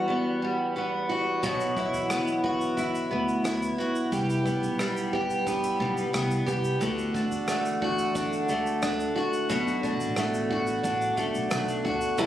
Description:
acoustic pop; 89 BPM; 4/4; straight; A4 = 440 Hz
picked steel-string acoustic guitar; accompaniment; 0.0-12.3 s; E2 to G4; -26 LUFS; equal; double-tracked left and right
flamenco guitar; arpeggios; 0.0-12.3 s; E3 to F#4; -34 LUFS; right 2 dB; tape echo
upright bass; bass; 1.4-12.3 s; E1 to E2; -34 LUFS; left 1 dB
unplugged drum kit; drums; 1.4-12.3 s; kick drum, rim click, shaker; -37 LUFS; equal
bright brass ensemble; sustained chords; 12.2-12.3 s; G4 to A5; -35 LUFS; equal
moderate studio reverb, RT60 0.6 s; recorded on a phone in the room, studio reverb, compression; -25 LUFS; side -12 dB against mid
0.0-12.2 A section
0.0 Emadd9; 1.4 Bsus4; 4.1 Cmaj7; 6.8 D; 9.5 Bm7

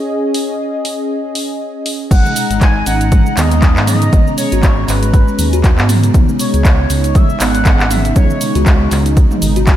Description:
afro house; 119 BPM; 4/4; swing 57% on 16ths; G# minor; A4 = 440 Hz
warm analog pad; sustained chords; 0.0-9.8 s; C#3 to A#5; -20 LUFS; equal; chorus, sidechain pumping
deep house drum kit; drums; 0.3-9.8 s; cabasa, crash cymbal, handclaps, hi-hat, toms; -19 LUFS; equal
expressive synth lead; melody; 2.1-8.9 s; B4 to G#5; -21 LUFS; equal; analog chorus, ping-pong delay
dark detuned saw bass; bass; 2.1-9.8 s; G#1 to G#2; -15 LUFS; equal; sidechain pumping
electronic kick drum; drums; 2.1-9.8 s; -10 LUFS; equal
buzzing kalimba; arpeggios; 2.3-9.7 s; D#3 to F#4; -20 LUFS; equal; sidechain pumping, ping-pong delay
moderate lush hall reverb, RT60 1.8 s; dreamy mix soaked in reverb; -10 LUFS; side -12 dB against mid
0.0-2.1 A section; 2.1-9.8 B section
drop 2.1-9.8
0.0 C#5; 2.1 G#m7; 6.1 C#5

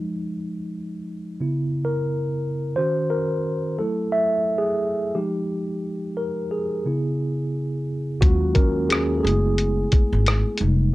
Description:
lo-fi hip hop; 88 BPM; 4/4; swing 59% on 16ths; A4 = 440 Hz
mellow tine electric piano; accompaniment; 0.0-10.9 s; Db3 to Fb5; -23 LUFS; equal; medium stereo tremolo, cassette tape
upright bass; bass; 8.2-10.9 s; F1 to Eb2; -21 LUFS; equal
lo-fi sampler-style drum kit; drums; 8.2-10.8 s; hi-hat, kick drum, rim click; -19 LUFS; equal
light reverb; cassette tape; -21 LUFS; side -18 dB against mid
0.0-8.2 A section; 8.2-10.9 B section
tine electric piano solo 0.0-8.2, 8.2-10.9
0.0 Fm7; 1.4 Dbm7; 2.8 Ebm7; 3.8 Gbm9; 5.2 Fm9; 6.9 Dbm7; 8.2 Ebm11; 9.2 Gbm11

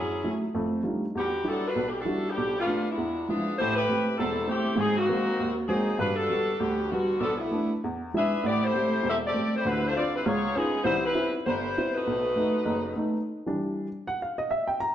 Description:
jazz; 198 BPM; 4/4; swing 61% on 8ths; E minor; A4 = 440 Hz
mellow saxophone section; melody; 0.0-13.0 s; D3 to E5; -27 LUFS; left 1 dB
warm upright piano; accompaniment; 0.0-14.9 s; E1 to A#5; -28 LUFS; right 1 dB
wet recital hall reverb, RT60 1.3 s; dark, warm production; -25 LUFS; side -10 dB against mid
0.0-3.6 A section; 3.6-13.3 B section; 13.3-14.9 C section
upright piano solo 13.3-14.9
0.0 F#m7; 0.5 F13; 1.2 Em9; 2.4 Bm7b5; 3.0 E7b9; 3.6 Am7; 4.8 G#9; 6.0 Gmaj7; 7.2 Bm7b5; 7.8 E7; 8.4 Am7; 9.6 Dm7; 10.2 C#9; 10.9 Cmaj7; 12.1 B7; 13.3 Em7

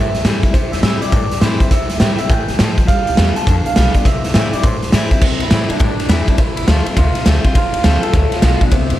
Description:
rockabilly; 205 BPM; 4/4; swing 64% on 8ths; C major; A4 = 440 Hz
electric guitar through a small old amp; melody; 0.0-9.0 s; C4 to A5; -22 LUFS; right 1 dB; spring reverb, tape echo
picked steel-string acoustic guitar; accompaniment; 0.0-9.0 s; F2 to F4; -22 LUFS; left 3 dB
upright bass; bass; 0.0-9.0 s; F1 to A2; -18 LUFS; equal
raw garage drum kit; drums; 0.1-9.0 s; crash cymbal, hi-hat, kick drum, ride cymbal, snare drum; -15 LUFS; equal
studio ambience; -12 LUFS; side -14 dB against mid
0.0-5.2 A section; 5.2-9.0 A section
0.0 C; 2.9 G7; 4.1 C; 6.4 F

